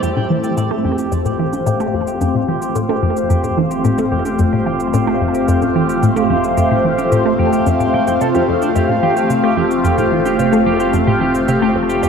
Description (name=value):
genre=ambient, sequencer-driven space music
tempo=110 BPM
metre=4/4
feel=straight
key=unclear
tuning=A4 = 439 Hz
part: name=phased analog pad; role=sustained chords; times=0.0-12.1 s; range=A3 to F5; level=-16 LUFS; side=left 1 dB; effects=phaser, chorus
part: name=electric guitar at the edge of break-up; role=arpeggios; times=0.0-12.1 s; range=D4 to G5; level=-22 LUFS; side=right 2 dB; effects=auto-pan, low-pass filter, tape echo
part: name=resonant blip pluck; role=riff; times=0.0-12.1 s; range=F2 to A3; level=-18 LUFS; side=equal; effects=phaser, tape echo
part: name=fat analog bass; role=bass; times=0.0-12.1 s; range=F1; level=-38 LUFS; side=equal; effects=none
part: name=cabasa and congas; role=percussion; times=0.0-12.1 s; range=none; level=-31 LUFS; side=right 4 dB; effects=overdrive, tape echo
room=wet lush hall reverb, RT60 2.8 s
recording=dark, warm production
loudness=-13 LUFS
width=side -6 dB against mid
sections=0.0-12.1 A section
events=filter sweep on clean electric guitar 0.0-12.1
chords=0.0 F